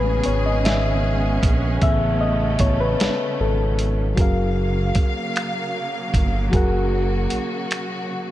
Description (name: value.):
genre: slow six-eight R&B.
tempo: 51 BPM (dotted quarters).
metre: 6/8.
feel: straight.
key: F# major.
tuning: A4 = 440 Hz.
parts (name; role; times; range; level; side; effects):
reed electric piano; accompaniment; 0.0-8.3 s; C#3 to F#5; -24 LUFS; left 2 dB; overdrive.
rich studio string section; sustained chords; 0.0-8.3 s; C#3 to E#5; -26 LUFS; right 1 dB; none.
smooth synth bass; bass; 0.0-7.4 s; F#1 to A#1; -22 LUFS; right 1 dB; none.
dusty soul sampler-style drum kit; drums; 0.2-7.9 s; finger snaps, hi-hat, kick drum, snare drum; -21 LUFS; right 1 dB; none.
room: light reverb.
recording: dark, warm production.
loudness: -18 LUFS.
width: side -14 dB against mid.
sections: 0.0-4.2 A section; 4.2-8.3 B section.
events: reed electric piano solo 0.0-4.2.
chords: 0.0 Amaj9; 4.2 F#maj7.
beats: 0.64 | 1.82 3.00 | 4.17 5.35 | 6.52 7.70.